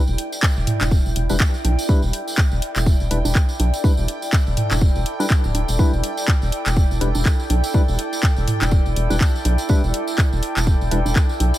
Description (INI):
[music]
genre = minimal techno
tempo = 123 BPM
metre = 4/4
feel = swing 57% on 16ths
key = E minor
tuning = A4 = 440 Hz
[part]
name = bubbling stepped-filter texture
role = texture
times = 0.0-11.6 s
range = G5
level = -35 LUFS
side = right 5 dB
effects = chorus, built-in reverb, sidechain pumping
[part]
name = warbly tape-like pad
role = texture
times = 0.0-11.6 s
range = E4 to G5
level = -27 LUFS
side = right 1 dB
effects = chorus, built-in reverb, sidechain pumping
[part]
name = rubbery square bass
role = bass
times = 0.1-11.5 s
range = D1 to B1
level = -21 LUFS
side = equal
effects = sidechain pumping
[part]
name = tambourine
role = percussion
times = 0.1-11.6 s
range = none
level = -33 LUFS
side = right 1 dB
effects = none
[part]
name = house drum kit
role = drums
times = 0.2-11.6 s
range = handclaps, hi-hat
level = -26 LUFS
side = left 1 dB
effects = none
[part]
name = electronic kick drum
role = drums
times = 0.4-11.3 s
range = none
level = -17 LUFS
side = equal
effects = none
[part]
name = electronic toms and congas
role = percussion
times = 0.7-11.5 s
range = none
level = -27 LUFS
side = right 2 dB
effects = none
[part]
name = percussive organ stab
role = stabs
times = 1.3-11.0 s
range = G3 to B4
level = -28 LUFS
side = left 2 dB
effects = chorus, dub echo
[sound]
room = little or no reverb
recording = none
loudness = -17 LUFS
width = side -14 dB against mid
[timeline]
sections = 0.0-11.6 A section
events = none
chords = 0.0 Em7